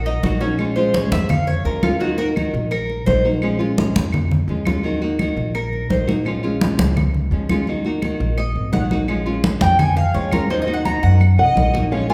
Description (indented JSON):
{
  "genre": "latin, Cuban son and guajira",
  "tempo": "170 BPM",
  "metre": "4/4",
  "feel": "straight",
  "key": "Bb minor",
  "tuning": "A4 = 437 Hz",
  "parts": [
    { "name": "nylon-string guitar", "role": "melody", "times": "0.0-0.2, 11.4-12.1 s", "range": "Eb5 to Ab5", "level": "-20 LUFS", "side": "equal", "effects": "none" },
    { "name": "rich studio violin section", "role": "second line", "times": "0.0-0.2, 11.4-12.1 s", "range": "Bb4 to F5", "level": "-31 LUFS", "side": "equal", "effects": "none" },
    { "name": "Cuban tres", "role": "arpeggios", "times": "0.0-3.2, 5.5-6.1, 8.4-12.1 s", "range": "Db4 to Bb5", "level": "-24 LUFS", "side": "equal", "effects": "none" },
    { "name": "upright bass", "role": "bass", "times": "0.0-12.1 s", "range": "Ab1 to Gb2", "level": "-24 LUFS", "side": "equal", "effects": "none" },
    { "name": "congas", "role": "percussion", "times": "0.1-12.1 s", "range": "none", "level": "-24 LUFS", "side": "equal", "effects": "none" },
    { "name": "nylon-string guitar", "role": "accompaniment", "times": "0.2-12.1 s", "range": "Eb3 to Gb4", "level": "-26 LUFS", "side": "equal", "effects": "none" },
    { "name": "claves", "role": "percussion", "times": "0.6-11.4 s", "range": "none", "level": "-35 LUFS", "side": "equal", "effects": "none" }
  ],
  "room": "wet recital hall reverb, RT60 1.4 s",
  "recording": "recorded in a church or concert hall",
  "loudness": "-19 LUFS",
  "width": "mono",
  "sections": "0.6-11.9 A section",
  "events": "Cuban tres solo 0.6-11.9",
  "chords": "0.0 Ebm; 0.6 Bbm7; 2.0 Ebm; 3.4 Bbm7; 4.8 Ebm; 6.3 Bbm7; 7.7 Ebm; 9.1 Bbm7; 10.5 Ebm"
}